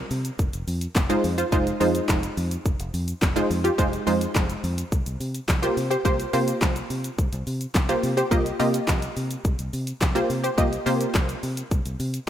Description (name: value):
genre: dance-pop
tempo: 106 BPM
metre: 4/4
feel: straight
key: F minor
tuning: A4 = 440 Hz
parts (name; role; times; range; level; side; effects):
- wide unison pluck; accompaniment; 0.0-11.4 s; Ab3 to Eb5; -24 LUFS; equal; sidechain pumping
- fingered electric bass; bass; 0.1-12.2 s; F1 to C3; -28 LUFS; equal; sidechain pumping
- pop drum kit; drums; 0.1-12.3 s; handclaps, hi-hat, kick drum, shaker, snare drum; -25 LUFS; equal; none
room: moderate lush hall reverb, RT60 2.6 s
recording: rough home demo mix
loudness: -22 LUFS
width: side -10 dB against mid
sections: 0.0-12.3 A section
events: none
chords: 0.4 Fm7; 4.9 C7sus4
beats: | 0.39 0.96 1.52 2.09 | 2.66 3.22 3.79 4.35 | 4.92 5.49 6.05 6.62 | 7.18 7.75 8.32 8.88 | 9.45 10.01 10.58 11.15 | 11.71